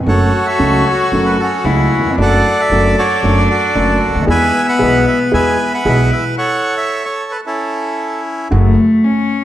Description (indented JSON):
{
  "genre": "tango",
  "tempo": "114 BPM",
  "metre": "4/4",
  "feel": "rubato",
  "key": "A major",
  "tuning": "A4 = 439 Hz",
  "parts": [
    { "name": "warm concert grand piano", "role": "accompaniment", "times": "0.0-8.7 s", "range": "B1 to A4", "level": "-17 LUFS", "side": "right 1 dB", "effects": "none" },
    { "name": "bandoneon", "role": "melody", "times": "0.1-8.5 s", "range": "C#4 to G#5", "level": "-16 LUFS", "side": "right 2 dB", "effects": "none" },
    { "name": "warm cello", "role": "second line", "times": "0.1-9.4 s", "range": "A3 to F#4", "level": "-17 LUFS", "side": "left 3 dB", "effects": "none" },
    { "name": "upright bass", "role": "bass", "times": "0.1-8.7 s", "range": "F#1 to E2", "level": "-17 LUFS", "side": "equal", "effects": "none" }
  ],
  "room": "wet recital hall reverb, RT60 1.4 s",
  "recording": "none",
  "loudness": "-11 LUFS",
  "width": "side -13 dB against mid",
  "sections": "0.0-8.5 A section",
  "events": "stop 6.4-8.5",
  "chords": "0.1 F#m; 2.2 D/F#; 4.3 E; 6.4 A; 8.5 F#m",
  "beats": "| 0.06 0.59 1.12 1.65 | 2.18 2.71 3.23 3.76 | 4.28 4.81 5.33 5.86 | 6.39 6.92 7.45 7.98 | 8.52 9.04"
}